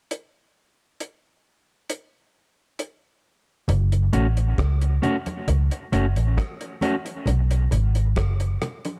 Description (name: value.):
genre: dub reggae.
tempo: 67 BPM.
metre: 4/4.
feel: straight.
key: F# minor.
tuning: A4 = 445 Hz.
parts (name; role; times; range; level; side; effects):
cloth-damped thuddy drum kit; drums; 0.1-9.0 s; hi-hat, kick drum, rim click; -31 LUFS; equal; none.
vintage muted fingered electric bass; bass; 3.7-8.6 s; F#1 to C#2; -22 LUFS; equal; none.
congas; percussion; 3.7-9.0 s; none; -34 LUFS; equal; high-pass filter on perc, dub echo.
mellow electric guitar; accompaniment; 4.1-7.1 s; A3 to F#4; -30 LUFS; equal; dub echo.
room: small room ambience.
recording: echo-heavy mix.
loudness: -23 LUFS.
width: mono.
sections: 0.1-3.7 A section; 3.7-9.0 B section.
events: none.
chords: 0.1 N.C.; 3.7 F#m; 7.3 B5.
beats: | 0.11 1.00 1.90 2.79 | 3.69 4.58 5.48 6.37 | 7.27 8.16.